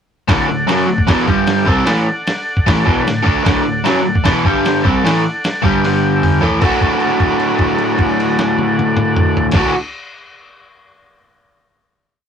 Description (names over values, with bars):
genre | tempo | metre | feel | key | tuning
garage rock duo or trio | 152 BPM | 4/4 | straight | D major | A4 = 440 Hz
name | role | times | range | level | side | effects
overdriven combo organ | sustained chords | 0.3-9.7 s | G4 to B5 | -21 LUFS | left 1 dB | none
overdriven electric guitar | riff | 0.3-9.7 s | D2 to F#4 | -14 LUFS | equal | none
lo-fi sampler-style drum kit | drums | 0.3-9.6 s | crash cymbal, hi-hat, kick drum, snare drum, toms | -18 LUFS | equal | none
room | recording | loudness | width
wet booth ambience, RT60 0.2 s | rough rehearsal-room recording | -12 LUFS | side -7 dB against mid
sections
0.3-6.6 riff; 6.6-9.8 final chord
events
transistor combo organ fill 5.4-6.6; drum fill 5.8-6.6; held note 6.6-9.5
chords
0.3 D; 1.3 G5; 1.7 D; 4.5 G5; 4.8 D; 5.6 G5; 6.4 D5; 6.6 D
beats
| 0.30 0.69 1.09 1.49 | 1.89 2.28 2.68 3.07 | 3.47 3.86 4.26 4.65 | 5.04 5.44 5.83 6.22 | 6.62 7.01 7.41 7.80 | 8.20 8.59 8.99 9.39